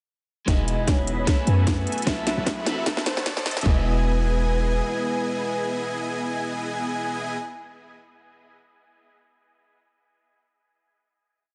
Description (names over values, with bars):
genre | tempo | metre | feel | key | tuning
future bass | 151 BPM | 4/4 | swing 55% on 16ths, half-time | E major | A4 = 439 Hz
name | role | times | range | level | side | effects
soft octave-layered synth lead | melody | 0.5-7.4 s | B4 to E5 | -33 LUFS | equal | chorus, tremolo, sidechain pumping, tape echo
electric guitar at the edge of break-up | accompaniment | 0.5-7.4 s | G#3 to D#5 | -36 LUFS | equal | subtle chorus, sidechain pumping, dub echo
airy dreamy lead | arpeggios | 0.5-7.4 s | G#5 to B5 | -37 LUFS | equal | chorus, sidechain pumping
dense compressed supersaw | riff | 0.5-7.4 s | B3 to B5 | -33 LUFS | equal | sidechain pumping, low-pass filter
warm 808-style bass | bass | 0.5-4.8 s | E1 to F#2 | -26 LUFS | equal | sidechain pumping
electronic kick drum | drums | 0.5-3.8 s | none | -25 LUFS | equal | studio reverb
trap drum kit | drums | 0.5-3.7 s | hi-hat, snare drum | -29 LUFS | equal | studio reverb
riser | sound effects | 2.0-3.7 s | none | -40 LUFS | equal | none
room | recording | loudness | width
light reverb | high-pass filter, nothing above 10.3 kHz | -24 LUFS | mono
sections
0.5-3.7 build; 3.7-6.8 final chord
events
build-up 0.5-3.7; drum fill 0.5-3.7; filter sweep on supersaw synth 0.5-3.7; filter sweep 0.5-3.7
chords
0.5 Emaj7; 1.3 F#m11; 2.1 B9sus4; 2.7 Am6; 3.7 Emaj7